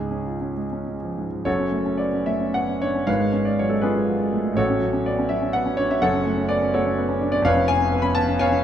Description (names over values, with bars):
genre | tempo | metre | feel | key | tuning
classical, romantic character piece for solo piano | 64-86 BPM (dotted quarters) | 6/8 | rubato | F# minor | A4 = 438 Hz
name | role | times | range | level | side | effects
warm concert grand piano | solo | 0.0-8.6 s | E#1 to B5 | -20 LUFS | equal | none
room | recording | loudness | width
moderate recital hall reverb, RT60 1.5 s | none | -20 LUFS | side -10 dB against mid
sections
0.0-1.5 A section; 1.5-8.6 B section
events
none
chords
0.0 C#; 1.5 F#m; 3.1 C#7/G#; 4.6 F#m/A; 6.0 F#m; 7.4 C#7/E#